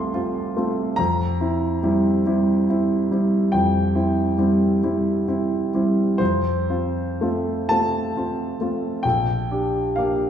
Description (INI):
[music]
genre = classical, romantic nocturne for solo piano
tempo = 38-48 BPM (dotted quarters)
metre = 12/8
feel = rubato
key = unclear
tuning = A4 = 440 Hz
[part]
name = clear grand piano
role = solo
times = 0.0-10.3 s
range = Bb1 to D6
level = -19 LUFS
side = equal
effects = none
[sound]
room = wet recital hall reverb, RT60 1.5 s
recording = heard from further back in the room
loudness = -19 LUFS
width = side -9 dB against mid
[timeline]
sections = 0.0-10.3 A section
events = none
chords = 0.0 F; 1.0 C7/F; 6.2 F; 9.0 Gm/Bb